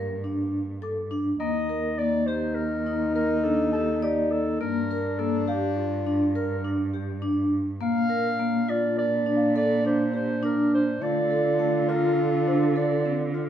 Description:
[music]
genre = contemporary instrumental, chamber music in an uneven meter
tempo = 206 BPM (eighths)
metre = 11/8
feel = straight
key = G minor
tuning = A4 = 440 Hz
[part]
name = dark clarinet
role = melody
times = 0.0-13.3 s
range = F4 to F5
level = -29 LUFS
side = right 1 dB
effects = none
[part]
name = mellow French horn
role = second line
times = 0.0-13.5 s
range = Bb3 to F4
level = -28 LUFS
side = left 1 dB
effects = none
[part]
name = vibraphone with medium mallets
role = arpeggios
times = 0.0-13.5 s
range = A3 to D5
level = -27 LUFS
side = left 1 dB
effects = none
[part]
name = dark cello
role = bass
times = 0.0-13.5 s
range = Eb2 to D3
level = -29 LUFS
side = right 3 dB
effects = none
[part]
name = celesta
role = texture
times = 0.0-13.5 s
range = Bb4 to D6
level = -38 LUFS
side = left 2 dB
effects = none
[sound]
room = moderate studio reverb, RT60 0.9 s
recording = heard from further back in the room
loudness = -22 LUFS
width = side -10 dB against mid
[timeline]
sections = 0.0-1.4 A section; 1.4-13.5 B section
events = none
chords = 0.0 Gmadd9; 1.4 Ebmaj7; 4.6 Gm7; 7.8 Bb; 11.0 Dm7

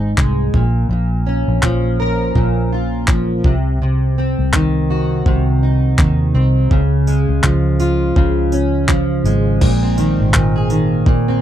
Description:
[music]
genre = acoustic pop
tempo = 83 BPM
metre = 4/4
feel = swing 60% on 16ths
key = unclear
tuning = A4 = 440 Hz
[part]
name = fingerpicked plugged-in steel-string acoustic guitar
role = accompaniment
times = 0.0-11.4 s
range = Ab2 to Bb4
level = -16 LUFS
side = right 1 dB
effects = double-tracked left and right
[part]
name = vintage muted fingered electric bass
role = bass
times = 0.0-11.4 s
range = Ab1 to Eb2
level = -17 LUFS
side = equal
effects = none
[part]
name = jungle sampler-style drum kit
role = drums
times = 0.2-11.3 s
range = crash cymbal, handclaps, kick drum, tambourine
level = -16 LUFS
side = equal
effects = none
[sound]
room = little or no reverb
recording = dry, close 1970s-style studio recording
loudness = -13 LUFS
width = side -11 dB against mid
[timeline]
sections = 0.0-9.6 A section; 9.6-11.4 B section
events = none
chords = 0.0 Ab; 0.5 Bbm; 3.4 Cdim; 6.7 Db; 9.6 Ab

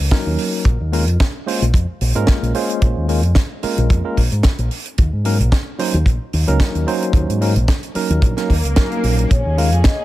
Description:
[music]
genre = nu-disco, nu disco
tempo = 111 BPM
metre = 4/4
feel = swing 54% on 16ths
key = Bb minor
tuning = A4 = 440 Hz
[part]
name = fingered electric bass with an envelope filter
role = bass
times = 0.0-9.8 s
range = Bb1 to Ab2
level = -17 LUFS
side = equal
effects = none
[part]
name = tine electric piano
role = accompaniment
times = 0.1-9.7 s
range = Gb3 to C5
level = -22 LUFS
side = equal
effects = medium stereo tremolo, digital delay
[part]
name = kick drum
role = drums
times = 0.1-10.0 s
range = none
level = -14 LUFS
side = equal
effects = none
[part]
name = tight funk drum kit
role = drums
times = 0.1-10.0 s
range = hi-hat, snare drum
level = -24 LUFS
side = right 2 dB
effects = none
[part]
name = swell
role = sound effects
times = 8.4-9.3 s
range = none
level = -26 LUFS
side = right 1 dB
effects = none
[part]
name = vibraphone with soft mallets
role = melody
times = 9.3-10.0 s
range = Db5 to F5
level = -23 LUFS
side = left 2 dB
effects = none
[part]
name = dark studio string section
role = sustained chords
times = 9.3-10.0 s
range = Bb3 to Ab4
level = -28 LUFS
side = left 1 dB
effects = sidechain pumping
[sound]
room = little or no reverb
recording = none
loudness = -15 LUFS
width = side -16 dB against mid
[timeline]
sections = 0.0-10.0 A section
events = swell 8.4-9.3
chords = 0.0 Ebm7; 0.7 Bbm7; 5.0 Ebm7; 9.3 Bbm7

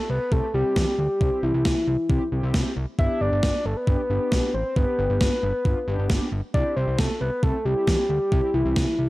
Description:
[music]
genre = synth-pop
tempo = 135 BPM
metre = 4/4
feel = straight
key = C major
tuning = A4 = 441 Hz
[part]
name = soft octave-layered synth lead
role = melody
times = 0.0-9.1 s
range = E4 to E5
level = -25 LUFS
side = left 1 dB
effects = chorus
[part]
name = fat analog bass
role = bass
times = 0.1-9.1 s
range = G1 to E2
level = -26 LUFS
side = equal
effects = none
[part]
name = mellow synth brass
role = accompaniment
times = 0.3-8.9 s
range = B3 to A4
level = -31 LUFS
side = left 1 dB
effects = chorus
[part]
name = gated 80s digital drum machine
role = drums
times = 0.3-8.9 s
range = kick drum, snare drum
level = -23 LUFS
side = equal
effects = gated reverb, gated reverb snare, overdrive
[sound]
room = little or no reverb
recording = dry, gritty hardware recording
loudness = -21 LUFS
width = side -18 dB against mid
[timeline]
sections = 0.0-9.1 A section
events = none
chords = 0.0 C; 3.0 G; 6.5 C

